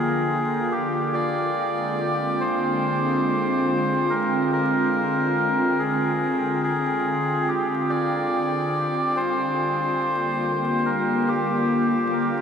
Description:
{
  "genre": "ambient",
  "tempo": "71 BPM",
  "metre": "4/4",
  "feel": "swing 57% on 16ths",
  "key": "F dorian",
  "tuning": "A4 = 444 Hz",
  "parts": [
    { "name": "melodica", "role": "melody", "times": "0.0-12.4 s", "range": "G4 to D5", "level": "-24 LUFS", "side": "equal", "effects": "dub echo" },
    { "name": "warbly tape-like pad", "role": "sustained chords", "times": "0.0-12.4 s", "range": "D3 to G5", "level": "-23 LUFS", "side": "equal", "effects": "chorus, built-in reverb" }
  ],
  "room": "wet huge ambient reverb, RT60 4.5 s",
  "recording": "dreamy mix soaked in reverb, vinyl crackle",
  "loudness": "-20 LUFS",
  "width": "side -7 dB against mid",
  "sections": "0.0-12.4 A section",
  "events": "none",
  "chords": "0.0 Gm7; 1.1 Fm69; 7.9 Gm7",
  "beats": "0.29 | 1.13 1.98 2.82 3.67 | 4.51 5.36 6.21 7.05 | 7.89 8.74 9.59 10.43 | 11.28 12.12"
}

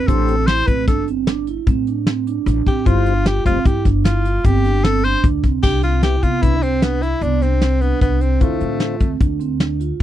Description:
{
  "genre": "progressive instrumental, band music in an uneven meter",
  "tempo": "151 BPM",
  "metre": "7/4",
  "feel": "straight",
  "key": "unclear",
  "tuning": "A4 = 440 Hz",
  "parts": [
    { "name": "breathy tenor saxophone", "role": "melody", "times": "0.0-9.2 s", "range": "A3 to C5", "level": "-21 LUFS", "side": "left 3 dB", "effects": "none" },
    { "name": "vibraphone with soft mallets", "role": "arpeggios", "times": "0.0-10.0 s", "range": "B3 to F4", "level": "-22 LUFS", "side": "right 14 dB", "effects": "none" },
    { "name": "upright bass", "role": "bass", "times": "0.0-10.0 s", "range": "F1 to C3", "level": "-19 LUFS", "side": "left 1 dB", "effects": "none" },
    { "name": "mellow tonewheel organ", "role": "accompaniment", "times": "0.1-9.0 s", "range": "C3 to C5", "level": "-23 LUFS", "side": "left 11 dB", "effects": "slow rotary speaker" },
    { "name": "soft brush drum kit", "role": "drums", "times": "0.1-10.0 s", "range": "crash cymbal, hi-hat, kick drum, snare drum", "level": "-18 LUFS", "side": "left 1 dB", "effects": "none" }
  ],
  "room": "little or no reverb",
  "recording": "dry, close 1970s-style studio recording",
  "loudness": "-15 LUFS",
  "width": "side -12 dB against mid",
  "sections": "0.0-5.6 A section; 5.6-10.0 B section",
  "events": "tenor saxophone solo 0.0-5.6",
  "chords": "0.1 Am7; 2.9 G7sus4; 5.6 Cmaj7; 8.4 Dm7",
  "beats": "| 0.08 0.48 0.88 1.27 1.67 2.07 2.46 | 2.86 3.26 3.65 4.05 4.45 4.84 5.24 | 5.63 6.03 6.43 6.83 7.22 7.62 8.02 | 8.41 8.81 9.21 9.61 10.00"
}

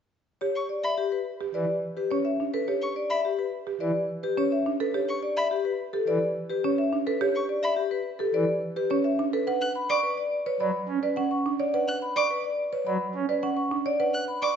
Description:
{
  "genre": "classical, minimalist pattern music",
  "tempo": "106 BPM",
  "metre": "4/4",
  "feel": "straight",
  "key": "A mixolydian",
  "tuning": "A4 = 443 Hz",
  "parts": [
    { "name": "vibraphone with medium hard mallets", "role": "melody", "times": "0.4-14.6 s", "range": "G4 to C#6", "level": "-27 LUFS", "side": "left 5 dB", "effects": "none" },
    { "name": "buzzing marimba with medium mallets", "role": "arpeggios", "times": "0.4-14.6 s", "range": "C#4 to D5", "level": "-28 LUFS", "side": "right 6 dB", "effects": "none" },
    { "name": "rich violin", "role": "arpeggios", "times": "0.6-14.5 s", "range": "B5 to F#6", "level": "-32 LUFS", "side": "left 1 dB", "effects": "none" },
    { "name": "pipe organ, foundations", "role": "accompaniment", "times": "1.5-13.3 s", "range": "E3 to C#4", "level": "-32 LUFS", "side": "right 1 dB", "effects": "none" }
  ],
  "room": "wet recital hall reverb, RT60 1.5 s",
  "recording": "nothing above 7.7 kHz",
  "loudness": "-24 LUFS",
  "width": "side -7 dB against mid",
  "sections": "0.4-14.6 A section",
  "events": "none",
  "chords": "0.4 A9sus4; 9.5 Bm",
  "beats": "| 0.41 0.98 1.55 2.11 | 2.68 3.25 3.81 4.38 | 4.94 5.51 6.08 6.64 | 7.21 7.77 8.34 8.91 | 9.47 10.04 10.60 11.17 | 11.74 12.30 12.87 13.43 | 14.00"
}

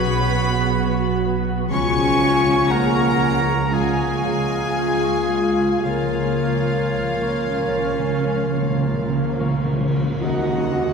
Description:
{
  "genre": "cinematic, emotional film score for orchestra",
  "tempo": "54-61 BPM",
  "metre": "4/4",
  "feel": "rubato",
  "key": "unclear",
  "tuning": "A4 = 440 Hz",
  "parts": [
    { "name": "warm symphonic violin section", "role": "melody", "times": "0.0-10.9 s", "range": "E#5 to C#6", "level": "-28 LUFS", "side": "left 1 dB", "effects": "none" },
    { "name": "mellow hollow concert flute", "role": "second line", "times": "0.0-10.9 s", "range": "C#5 to G#5", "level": "-29 LUFS", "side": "left 2 dB", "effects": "none" },
    { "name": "warm oboe", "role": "second line", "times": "0.0-10.9 s", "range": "E#4 to Gb5", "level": "-29 LUFS", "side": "right 1 dB", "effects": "none" },
    { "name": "warm studio violin section", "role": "second line", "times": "0.0-10.9 s", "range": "Bb4 to C#6", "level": "-32 LUFS", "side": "left 1 dB", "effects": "none" },
    { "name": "dark symphonic viola section", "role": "accompaniment", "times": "0.0-10.9 s", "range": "E#3 to F#4", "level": "-28 LUFS", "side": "right 1 dB", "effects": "none" },
    { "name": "dark French horn section", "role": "sustained chords", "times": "0.0-10.9 s", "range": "C#4 to A#4", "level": "-24 LUFS", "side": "left 1 dB", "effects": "none" },
    { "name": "concert harp", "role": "arpeggios", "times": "0.0-10.9 s", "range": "B2 to C#6", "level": "-29 LUFS", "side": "left 3 dB", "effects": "none" },
    { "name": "dark chamber cello section", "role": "bass", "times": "0.0-10.9 s", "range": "Eb2 to C#4", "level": "-28 LUFS", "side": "right 2 dB", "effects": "none" },
    { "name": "dark chamber double bass section", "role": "bass", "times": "0.0-10.9 s", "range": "B1 to Eb2", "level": "-25 LUFS", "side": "right 3 dB", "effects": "none" },
    { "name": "timpani", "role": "percussion", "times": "5.8-10.2 s", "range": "C#3", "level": "-24 LUFS", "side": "right 1 dB", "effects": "none" },
    { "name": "cymbal swell and tam-tam", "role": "percussion", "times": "5.9-10.9 s", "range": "none", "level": "-35 LUFS", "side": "left 2 dB", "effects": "none" },
    { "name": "clear clarinet", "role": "second line", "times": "10.2-10.9 s", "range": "Eb5", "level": "-31 LUFS", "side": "right 4 dB", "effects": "none" }
  ],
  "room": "wet cathedral reverb, RT60 6.7 s",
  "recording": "recorded in a church or concert hall",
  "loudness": "-18 LUFS",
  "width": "side -5 dB against mid",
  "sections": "0.0-10.2 A section",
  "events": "timpani fill 5.8-10.2; band accent 10.2-10.9",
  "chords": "0.0 Bsus2; 1.7 C#; 10.2 Ebm",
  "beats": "0.71 | 1.72 2.72 3.73 4.78 | 5.85 6.96 8.05 9.13 | 10.20"
}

